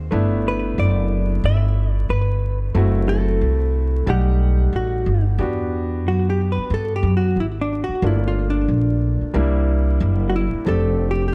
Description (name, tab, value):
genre	hip hop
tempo	91 BPM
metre	4/4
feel	swing 59% on 16ths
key	unclear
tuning	A4 = 440 Hz
part	warm concert grand piano	accompaniment	0.0-11.3 s	G3 to F#5	-28 LUFS	equal	none
part	upright bass	bass	0.0-11.3 s	F1 to G2	-21 LUFS	equal	none
part	hollow-body jazz guitar	melody	0.5-11.3 s	D4 to E5	-28 LUFS	equal	slapback echo
room	studio ambience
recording	dark, warm production, vinyl crackle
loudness	-20 LUFS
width	mono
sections	0.0-5.4 A section; 5.4-11.3 B section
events	hollow-body jazz guitar solo 5.4-11.3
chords	0.1 G69; 2.8 F#m7b5; 4.1 B7b13; 5.4 Em7; 8.0 Gm7; 9.3 C7; 10.7 F6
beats	| 0.11 0.77 1.43 2.09 | 2.75 3.41 4.07 4.73 | 5.39 6.05 6.71 7.37 | 8.03 8.69 9.34 10.00 | 10.66 11.32